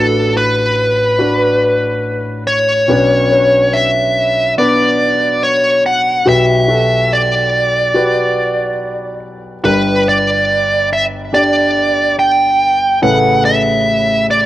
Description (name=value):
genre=pop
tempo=71 BPM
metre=4/4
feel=straight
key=unclear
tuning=A4 = 440 Hz
part: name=smooth overdriven lead guitar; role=melody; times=0.0-14.4 s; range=A4 to G5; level=-12 LUFS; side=right 1 dB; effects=cassette tape
part: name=warm concert grand piano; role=accompaniment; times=0.0-14.5 s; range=G1 to D5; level=-16 LUFS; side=left 1 dB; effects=cassette tape
room=moderate spring reverb, RT60 1.2 s, small room ambience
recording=home recording on cassette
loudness=-11 LUFS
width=side -14 dB against mid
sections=0.0-9.6 A section; 9.6-14.5 B section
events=none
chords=0.0 D6/A; 2.9 Bmadd9; 6.3 Gmaj7/B; 9.6 G; 13.0 Aadd9